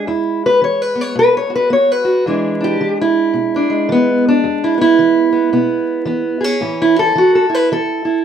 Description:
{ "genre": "acoustic country blues, solo or duo", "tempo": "110 BPM", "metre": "4/4", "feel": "swing 60% on 8ths", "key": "E mixolydian", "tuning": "A4 = 439 Hz", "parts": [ { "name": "fingerpicked steel-string acoustic guitar", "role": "solo", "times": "0.0-8.2 s", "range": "E2 to C#5", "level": "-12 LUFS", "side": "right 1 dB", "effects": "none" } ], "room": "light reverb", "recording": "band playing live in one room, vinyl crackle", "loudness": "-12 LUFS", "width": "side -8 dB against mid", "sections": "0.0-2.3 A section; 2.3-8.2 A section", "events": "none", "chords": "0.0 E; 1.2 B5; 2.3 E7; 6.6 A", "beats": "| 0.07 0.62 1.17 1.71 | 2.26 2.80 3.35 3.89 | 4.44 4.98 5.53 6.07 | 6.62 7.16 7.71" }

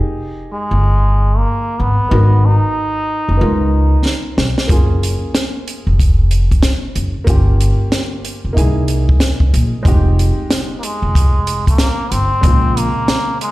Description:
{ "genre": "hip hop, jazz-hop", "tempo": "93 BPM", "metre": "4/4", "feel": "swing 62% on 16ths", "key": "unclear", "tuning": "A4 = 438 Hz", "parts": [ { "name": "dark baby grand piano", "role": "accompaniment", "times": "0.0-13.5 s", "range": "Db3 to Bb4", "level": "-24 LUFS", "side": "equal", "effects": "plate reverb" }, { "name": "trombone with metal mute", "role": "melody", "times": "0.5-4.4, 10.8-13.5 s", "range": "Ab3 to Eb4", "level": "-19 LUFS", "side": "equal", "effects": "plate reverb" }, { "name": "upright bass", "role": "bass", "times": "0.7-12.9 s", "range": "F1 to Db2", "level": "-14 LUFS", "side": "equal", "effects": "none" }, { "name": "compact cocktail drum kit", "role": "drums", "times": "4.1-13.5 s", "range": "hi-hat, kick drum, snare drum", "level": "-14 LUFS", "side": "equal", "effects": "none" } ], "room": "little or no reverb", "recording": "played on a big sound system in a bare room, large studio reverb", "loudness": "-12 LUFS", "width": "side -18 dB against mid", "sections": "0.0-13.5 A section", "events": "drum fill 4.0-4.7", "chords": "0.0 Fm11 (rootless); 2.1 Abm9; 3.4 Db13; 4.7 Gbmaj7; 7.3 Gm7b5; 8.6 C7alt; 9.9 Fm9; 12.4 Bbm7", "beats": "0.18 0.82 1.47 | 2.11 2.76 3.40 4.05 | 4.69 5.34 5.98 6.63 | 7.28 7.92 8.56 9.21 | 9.86 10.50 11.15 11.79 | 12.44 13.08" }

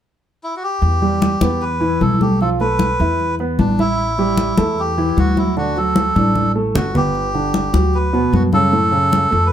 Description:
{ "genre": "Afro-Cuban jazz", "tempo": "152 BPM", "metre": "4/4", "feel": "straight", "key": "E minor", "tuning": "A4 = 440 Hz", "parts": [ { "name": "melodica", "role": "melody", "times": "0.4-9.5 s", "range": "D4 to B4", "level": "-19 LUFS", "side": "right 1 dB", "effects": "none" }, { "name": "upright bass", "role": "bass", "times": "0.8-9.5 s", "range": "G1 to F#2", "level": "-20 LUFS", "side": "equal", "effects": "none" }, { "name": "congas", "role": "percussion", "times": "0.8-9.5 s", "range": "none", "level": "-20 LUFS", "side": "left 2 dB", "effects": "none" }, { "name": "warm concert grand piano", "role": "accompaniment", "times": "1.0-9.5 s", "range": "A2 to E5", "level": "-20 LUFS", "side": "right 2 dB", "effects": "none" } ], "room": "light reverb", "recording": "none", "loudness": "-14 LUFS", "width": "side -10 dB against mid", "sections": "0.8-9.5 A section", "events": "drum fill 6.2-7.1", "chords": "0.0 N.C.; 0.8 Em; 2.4 Fmaj7#11/B; 3.2 E5; 4.0 A5; 5.6 D6; 7.1 Gmaj7; 8.7 F#m", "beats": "0.03 0.42 | 0.82 1.22 1.61 2.01 | 2.40 2.80 3.19 3.59 | 3.98 4.38 4.78 5.17 | 5.57 5.96 6.36 6.75 | 7.15 7.54 7.94 8.33 | 8.73 9.12 9.52" }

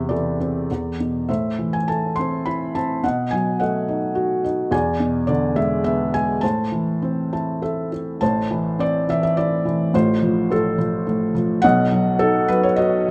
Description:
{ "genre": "classical, lyrical solo piano", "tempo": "104 BPM", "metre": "3/4", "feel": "rubato", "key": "A harmonic minor", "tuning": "A4 = 440 Hz", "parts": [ { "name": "felt-muted upright piano", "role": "solo", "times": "0.0-13.1 s", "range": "A1 to C6", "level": "-21 LUFS", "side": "equal", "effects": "none" } ], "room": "light reverb", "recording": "close, detailed microphones", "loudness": "-21 LUFS", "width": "mono", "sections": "0.0-8.2 A section; 8.2-13.1 A section", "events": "felt piano fill 7.0-8.2", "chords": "0.0 Am/E; 0.7 E5; 1.3 Am; 3.0 B7; 4.7 E7; 6.4 Am; 9.9 F/A; 11.6 B", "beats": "0.09 0.69 | 1.29 1.88 2.46 | 3.04 3.61 4.17 | 4.73 5.29 5.85 | 6.43 7.02 7.62 | 8.21 8.79 9.37 | 9.94 10.51 11.07 | 11.64 12.21 12.78" }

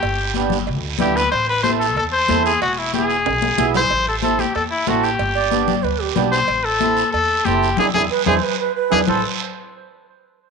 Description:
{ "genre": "latin, cumbia", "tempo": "186 BPM", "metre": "4/4", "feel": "straight", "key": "A dorian", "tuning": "A4 = 439 Hz", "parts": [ { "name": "clear trumpet", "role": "melody", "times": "0.0-9.2 s", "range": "E4 to C5", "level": "-19 LUFS", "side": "left 3 dB", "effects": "none" }, { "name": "upright bass", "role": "bass", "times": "0.0-9.2 s", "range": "E1 to E2", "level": "-26 LUFS", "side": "equal", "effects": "none" }, { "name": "cowbell and timbales", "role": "percussion", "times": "0.0-9.2 s", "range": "none", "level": "-30 LUFS", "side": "right 14 dB", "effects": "none" }, { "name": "guiro", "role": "percussion", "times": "0.0-9.2 s", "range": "none", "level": "-29 LUFS", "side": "right 14 dB", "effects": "none" }, { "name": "congas", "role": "percussion", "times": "0.3-9.2 s", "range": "none", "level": "-24 LUFS", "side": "left 14 dB", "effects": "none" }, { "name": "mellow accordion", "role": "accompaniment", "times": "0.4-9.2 s", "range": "B3 to A4", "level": "-24 LUFS", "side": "right 13 dB", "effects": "none" }, { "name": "breathy bansuri", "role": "second line", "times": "5.4-9.2 s", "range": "G4 to D5", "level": "-22 LUFS", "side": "right 10 dB", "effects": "tape echo" } ], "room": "wet spring reverb, RT60 1.8 s", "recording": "1960s-style stereo with parts hard left and right, nothing above 10.4 kHz", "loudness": "-16 LUFS", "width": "side -5 dB against mid", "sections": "0.0-3.9 A section; 3.9-9.1 B section; 9.1-10.4 C section", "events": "drum fill 3.3-3.9, 8.1-9.1; band accent 7.8-9.1", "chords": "0.0 G; 1.3 Am; 2.6 E; 3.9 Am; 5.2 G; 6.5 Am; 7.8 E7; 9.1 Am", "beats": "| 0.03 0.35 0.67 1.00 | 1.32 1.64 1.97 2.29 | 2.61 2.94 3.26 3.58 | 3.91 4.23 4.55 4.88 | 5.20 5.52 5.84 6.17 | 6.49 6.82 7.14 7.46 | 7.78 8.11 8.43 8.76 | 9.08" }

